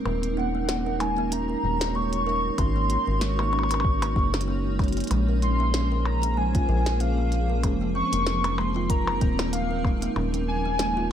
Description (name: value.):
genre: IDM.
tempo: 95 BPM.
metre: 4/4.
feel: swing 56% on 16ths.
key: Bb minor.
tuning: A4 = 441 Hz.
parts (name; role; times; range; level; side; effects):
granular cloud pad; sustained chords; 0.0-11.1 s; F3 to Db5; -31 LUFS; right 1 dB; built-in reverb.
kalimba; arpeggios; 0.1-11.1 s; F3 to Bb4; -31 LUFS; right 3 dB; digital delay.
rubbery square bass; bass; 0.1-11.1 s; Eb1 to Bb1; -26 LUFS; equal; none.
glitchy drum kit; drums; 0.1-10.9 s; hi-hat, percussion blips, snare drum; -32 LUFS; equal; none.
warbly nostalgic lead; melody; 0.4-11.1 s; F5 to Db6; -29 LUFS; left 1 dB; tremolo, wide subtle chorus.
electronic kick drum; drums; 2.6-10.0 s; none; -25 LUFS; equal; none.
room: light reverb, digital ambience.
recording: none.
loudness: -22 LUFS.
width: side -9 dB against mid.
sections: 0.0-11.1 A section.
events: none.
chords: 0.1 Ebm7; 2.6 Ab7sus4; 5.1 Bbm9; 7.6 F7sus4; 10.2 Ebsus2.